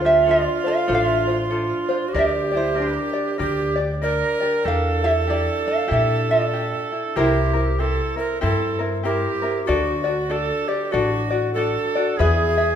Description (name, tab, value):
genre	Hawaiian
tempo	96 BPM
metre	4/4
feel	swing 60% on 8ths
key	D minor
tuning	A4 = 441 Hz
part	tenor ukulele	melody	0.0-9.4 s	D4 to F5	-21 LUFS	right 2 dB	none
part	breathy bright bass recorder	second line	0.0-12.8 s	F4 to Bb4	-23 LUFS	right 3 dB	none
part	tenor ukulele	accompaniment	0.0-12.8 s	C4 to E5	-24 LUFS	left 3 dB	none
part	upright bass	bass	0.0-12.8 s	A1 to Bb2	-25 LUFS	equal	none
room	wet recital hall reverb, RT60 1.6 s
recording	minimal, uncompressed stereo recording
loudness	-18 LUFS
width	side -9 dB against mid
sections	0.0-12.8 A section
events	none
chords	0.0 Dm7; 2.1 Gm/D; 4.7 Em7b5; 7.2 C7; 9.7 D; 12.2 E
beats	0.26 0.89 1.52 | 2.15 2.77 3.40 4.03 | 4.66 5.29 5.91 6.54 | 7.17 7.79 8.42 9.05 | 9.68 10.30 10.93 11.56 | 12.19